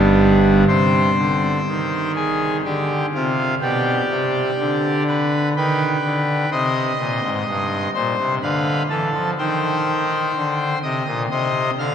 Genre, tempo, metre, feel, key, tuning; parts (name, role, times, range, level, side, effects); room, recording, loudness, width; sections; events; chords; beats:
classical, chorale-style piece for pipe organ; 62 BPM; 3/4; rubato; C minor; A4 = 440 Hz
pipe organ, trumpet; solo; 0.0-11.9 s; G1 to F6; -17 LUFS; equal
wet cathedral reverb, RT60 5.9 s; -17 LUFS; side -8 dB against mid
0.7-11.9 A section
0.0 G; 0.7 Cm; 2.6 Csus24; 3.6 G/B; 6.5 Cm; 8.4 Bdim/D; 9.4 Cm
| 0.67 1.67 2.63 | 3.61 4.58 5.55 | 6.52 7.48 8.42 | 9.37 10.34 11.29